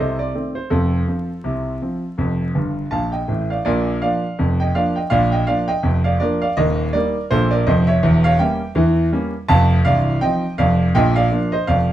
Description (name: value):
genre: ragtime piano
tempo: 82 BPM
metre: 2/4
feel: swing 57% on 16ths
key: Bb major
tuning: A4 = 440 Hz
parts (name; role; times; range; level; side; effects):
- clear grand piano; solo; 0.0-11.9 s; C1 to A5; -16 LUFS; right 1 dB; none
room: moderate studio reverb, RT60 0.8 s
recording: dark, warm production, vinyl crackle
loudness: -16 LUFS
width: side -12 dB against mid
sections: 0.0-3.7 A section; 3.7-11.9 B section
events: grand piano fill 2.6-3.7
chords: 0.0 F7 (rootless); 0.7 F; 3.7 Bb; 6.6 Eb; 8.0 Edim7; 9.5 F5; 11.0 Bb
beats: | 0.71 1.45 | 2.19 2.92 | 3.66 4.39 | 5.12 5.85 | 6.58 7.31 | 8.04 8.77 | 9.50 10.23 | 10.96 11.69